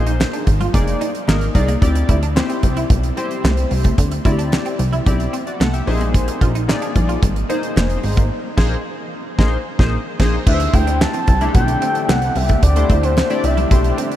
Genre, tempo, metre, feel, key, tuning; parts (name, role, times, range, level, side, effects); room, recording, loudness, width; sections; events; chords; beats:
early-eighties boogie funk; 111 BPM; 4/4; straight; A4 = 438 Hz
chorused polysynth; accompaniment; 0.0-14.1 s; A3 to F#5; -23 LUFS; left 3 dB
electric guitar at the edge of break-up; riff; 0.0-14.1 s; Ab3 to F4; -28 LUFS; right 4 dB; ensemble chorus
plucky analog bass; bass; 0.0-13.9 s; F1 to D2; -18 LUFS; equal
damped 70s drum kit; drums; 0.1-14.2 s; crash cymbal, handclaps, hi-hat, kick drum, snare drum; -18 LUFS; equal
congas; percussion; 0.2-14.1 s; -30 LUFS; left 5 dB
expressive synth lead; melody; 10.5-14.0 s; C5 to A5; -21 LUFS; left 1 dB; chorus, tape echo
lush unison pad; sustained chords; 10.5-14.2 s; D3 to G4; -27 LUFS; equal; chorus, phaser
moderate huge ambient reverb, RT60 8.2 s; dreamy mix soaked in reverb; -15 LUFS; side -12 dB against mid
0.0-10.5 A section; 10.5-14.2 B section
band accent 8.3-10.5
0.0 Bb9sus4; 1.8 D9sus4; 5.9 Bb9sus4; 10.5 D9sus4
0.20 0.74 1.28 | 1.82 2.36 2.90 3.44 | 3.98 4.52 5.06 5.60 | 6.14 6.68 7.22 7.76 | 8.31 8.85 9.39 9.93 | 10.47 11.01 11.55 12.09 | 12.63 13.17 13.71